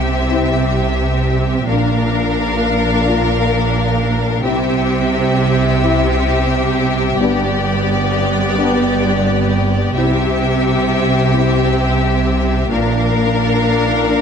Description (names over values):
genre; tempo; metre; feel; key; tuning
cinematic, epic orchestral film score; 87 BPM; 4/4; straight; unclear; A4 = 437 Hz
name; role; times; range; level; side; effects
rich symphonic violin section; melody; 0.0-14.2 s; D5 to F5; -23 LUFS; left 3 dB; none
warm symphonic violin section; second line; 0.0-14.2 s; G4 to Bb4; -20 LUFS; left 5 dB; none
rich symphonic viola section; accompaniment; 0.0-14.2 s; B3 to D4; -22 LUFS; right 2 dB; none
clear studio double bass section; bass; 0.0-14.2 s; G1 to C2; -19 LUFS; right 2 dB; none
clear symphonic cello section; bass; 0.0-14.2 s; G2 to C3; -19 LUFS; right 2 dB; none
mellow French horn section; sustained chords; 0.3-14.2 s; B3 to F4; -22 LUFS; left 3 dB; none
room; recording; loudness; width
moderate scoring stage reverb, RT60 1.7 s; none; -13 LUFS; side -7 dB against mid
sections
0.0-14.2 A section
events
none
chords
0.0 C; 1.7 Bb; 4.4 C; 7.2 G; 10.0 C; 12.7 Bb